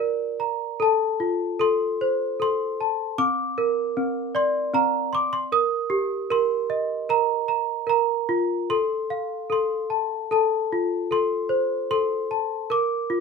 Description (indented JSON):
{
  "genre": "children's music, lullaby",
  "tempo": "76 BPM",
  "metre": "3/4",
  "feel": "rubato",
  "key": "unclear",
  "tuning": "A4 = 440 Hz",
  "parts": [
    { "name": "worn celesta", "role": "solo", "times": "0.0-13.2 s", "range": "C4 to Eb6", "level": "-22 LUFS", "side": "equal", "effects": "none" }
  ],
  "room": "light reverb",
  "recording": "minimal, uncompressed stereo recording",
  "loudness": "-22 LUFS",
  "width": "side -5 dB against mid",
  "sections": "0.8-13.2 A section",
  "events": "none",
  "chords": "0.0 Bb; 0.8 F; 3.2 Bbadd9; 5.5 Eb; 7.9 Bb5; 8.7 F; 12.7 Bb"
}